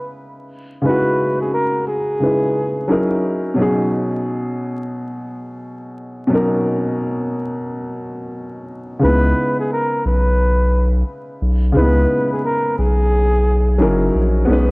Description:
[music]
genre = lo-fi hip hop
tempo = 88 BPM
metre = 4/4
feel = swing 63% on 16ths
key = C# dorian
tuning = A4 = 441 Hz
[part]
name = mellow flugelhorn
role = melody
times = 0.0-3.1, 9.0-14.0 s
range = G#4 to B4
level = -20 LUFS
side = equal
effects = low-pass filter
[part]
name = dark upright piano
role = accompaniment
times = 0.0-14.7 s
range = B2 to B4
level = -19 LUFS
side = equal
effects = low-pass filter
[part]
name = saturated sub bass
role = bass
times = 9.0-14.7 s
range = F#1 to C#2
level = -15 LUFS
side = equal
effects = transformer saturation
[sound]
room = light reverb, studio reverb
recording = worn, warbling old tape, cassette tape, vinyl crackle, warbly pitch drift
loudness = -15 LUFS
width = side -29 dB against mid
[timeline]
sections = 0.0-9.0 A section; 9.0-14.7 B section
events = none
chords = 0.0 C#m9; 2.9 F#13; 3.6 B69; 9.0 C#m9; 13.8 F#13

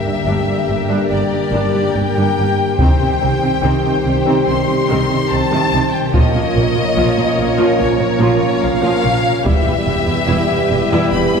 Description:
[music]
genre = cinematic, epic orchestral film score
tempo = 72 BPM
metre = 4/4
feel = straight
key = unclear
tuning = A4 = 444 Hz
[part]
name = clear symphonic violin section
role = melody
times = 0.0-11.4 s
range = C#5 to C6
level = -20 LUFS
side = left 4 dB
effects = none
[part]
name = warm symphonic violin section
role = second line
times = 0.0-11.4 s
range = G4 to C#5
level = -24 LUFS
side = left 2 dB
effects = none
[part]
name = mellow trombone section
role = sustained chords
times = 0.0-11.4 s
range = D3 to A#3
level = -22 LUFS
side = right 2 dB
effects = none
[part]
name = warm French horn section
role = sustained chords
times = 0.0-11.4 s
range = Bb3 to G4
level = -22 LUFS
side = equal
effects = none
[part]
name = warm symphonic viola section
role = accompaniment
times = 0.1-11.4 s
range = Eb3 to E#4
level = -22 LUFS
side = right 1 dB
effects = none
[part]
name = warm symphonic cello section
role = bass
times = 0.1-11.4 s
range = E2 to C3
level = -22 LUFS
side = right 2 dB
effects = none
[part]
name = dark symphonic double bass section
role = bass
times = 0.3-11.2 s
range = E1 to C2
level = -22 LUFS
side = right 2 dB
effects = none
[part]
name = taiko ensemble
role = drums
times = 2.8-10.2 s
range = none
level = -18 LUFS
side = equal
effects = none
[sound]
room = wet concert hall reverb, RT60 2.2 s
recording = heard from further back in the room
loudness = -13 LUFS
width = side -6 dB against mid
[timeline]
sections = 0.0-11.4 A section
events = none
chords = 0.0 Gm; 2.8 Cm; 6.1 A#m; 9.5 Em

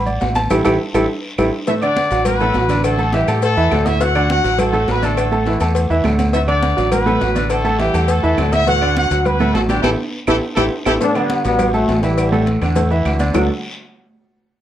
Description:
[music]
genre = latin, salsa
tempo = 206 BPM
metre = 4/4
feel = straight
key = D major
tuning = A4 = 435 Hz
[part]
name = clear concert grand piano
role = accompaniment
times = 0.0-13.5 s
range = A2 to A5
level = -19 LUFS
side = right 2 dB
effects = none
[part]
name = deep dub fingered electric bass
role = bass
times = 0.0-13.5 s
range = A1 to A2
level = -19 LUFS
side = equal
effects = none
[part]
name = congas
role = percussion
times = 0.1-13.4 s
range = none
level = -26 LUFS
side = right 1 dB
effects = none
[part]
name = maracas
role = percussion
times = 0.1-13.4 s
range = none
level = -38 LUFS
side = left 6 dB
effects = none
[part]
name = cowbell and bongos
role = percussion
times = 0.2-13.4 s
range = none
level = -25 LUFS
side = left 5 dB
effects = none
[part]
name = guiro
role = percussion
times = 0.2-13.4 s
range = none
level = -35 LUFS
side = left 2 dB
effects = none
[part]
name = timbales and agogo bells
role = percussion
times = 0.2-13.4 s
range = none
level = -26 LUFS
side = right 3 dB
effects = none
[part]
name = claves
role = percussion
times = 0.5-13.4 s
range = none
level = -31 LUFS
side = right 3 dB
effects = none
[part]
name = clear horn section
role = melody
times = 1.7-10.9 s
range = G3 to F#5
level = -19 LUFS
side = left 1 dB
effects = none
[part]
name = clear trombone section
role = melody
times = 11.0-13.5 s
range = E3 to D4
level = -19 LUFS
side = left 2 dB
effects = none
[sound]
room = moderate studio reverb, RT60 0.6 s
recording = worn, warbling old tape, cassette tape, warbly pitch drift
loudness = -14 LUFS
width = side -11 dB against mid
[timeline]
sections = 0.0-1.7 A section; 1.7-11.0 B section; 11.0-13.3 C section; 13.3-14.5 D section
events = grand piano solo 0.0-1.7; drum fill 0.5-1.7, 10.1-11.0; band accent 0.5-1.7, 9.8-11.0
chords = 0.0 D; 0.5 A5; 1.7 D6; 2.8 A7sus4; 4.0 D6; 5.2 Asus4; 6.3 D6; 7.5 A7sus4; 8.7 D6; 9.8 A5; 11.0 D6; 12.2 A7sus4; 13.3 D6

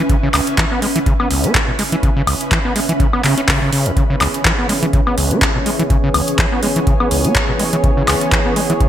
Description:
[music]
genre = acid house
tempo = 124 BPM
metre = 4/4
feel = swing 56% on 16ths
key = C# minor pentatonic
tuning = A4 = 441 Hz
[part]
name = overdriven acid bass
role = riff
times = 0.0-8.9 s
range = C#2 to C#4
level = -19 LUFS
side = equal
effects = distortion, tube saturation, sidechain pumping, ping-pong delay
[part]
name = granular cloud pad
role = texture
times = 0.0-8.9 s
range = C#4 to B5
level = -22 LUFS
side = right 1 dB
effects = built-in reverb, lush chorus, sidechain pumping
[part]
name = electro analog drum machine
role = drums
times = 0.1-8.9 s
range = handclaps, hi-hat, woodblock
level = -18 LUFS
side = equal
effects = studio reverb, gated reverb
[part]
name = electronic kick drum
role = drums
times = 0.1-8.9 s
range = none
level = -18 LUFS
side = equal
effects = studio reverb
[part]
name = warm analog pad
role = sustained chords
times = 4.0-8.9 s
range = E3 to C#5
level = -21 LUFS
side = right 1 dB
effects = chorus, sidechain pumping
[sound]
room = moderate plate reverb, RT60 1.3 s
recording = bright 1980s-style digital production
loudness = -13 LUFS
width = side -11 dB against mid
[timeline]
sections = 0.0-8.9 A section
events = filter sweep on acid bass 0.0-8.9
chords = 0.0 C#m7

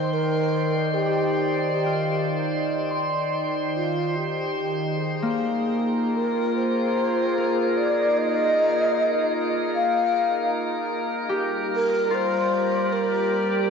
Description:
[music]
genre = ambient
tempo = 75 BPM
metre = 4/4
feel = straight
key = unclear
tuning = A4 = 440 Hz
[part]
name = breathy mellow wooden-headed alto flute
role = melody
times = 0.0-13.7 s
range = F4 to F5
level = -25 LUFS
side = left 2 dB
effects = ping-pong delay
[part]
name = evolving wavetable pad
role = sustained chords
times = 0.0-13.7 s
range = Eb3 to G5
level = -26 LUFS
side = right 1 dB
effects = chorus, built-in reverb
[part]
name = drifting glass-harmonics texture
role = texture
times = 0.0-13.7 s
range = Bb4 to C6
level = -30 LUFS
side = equal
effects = chorus, built-in reverb
[part]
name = Celtic harp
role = arpeggios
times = 1.1-13.7 s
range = Bb3 to C6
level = -29 LUFS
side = left 1 dB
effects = ping-pong delay
[sound]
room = wet concert hall reverb, RT60 2.1 s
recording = cassette tape, nothing above 7.7 kHz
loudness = -21 LUFS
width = side -6 dB against mid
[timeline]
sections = 0.0-13.7 A section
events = fade-in on harp 0.0-13.7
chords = 0.0 Ebmaj7; 4.9 Bb7sus4; 11.3 Gm

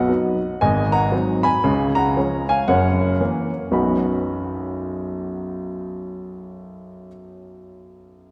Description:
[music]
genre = jazz, stride piano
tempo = 115 BPM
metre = 4/4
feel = swing 62% on 8ths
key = B major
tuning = A4 = 439 Hz
[part]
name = warm baby grand piano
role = solo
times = 0.0-8.3 s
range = F#1 to B5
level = -22 LUFS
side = equal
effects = none
[sound]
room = wet church reverb, RT60 2.9 s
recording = recorded in a church or concert hall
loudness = -21 LUFS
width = mono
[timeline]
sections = 0.0-3.7 A section; 3.7-7.9 B section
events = none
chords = 0.0 B; 0.6 G#7; 1.6 C#; 2.7 F#7; 3.7 B

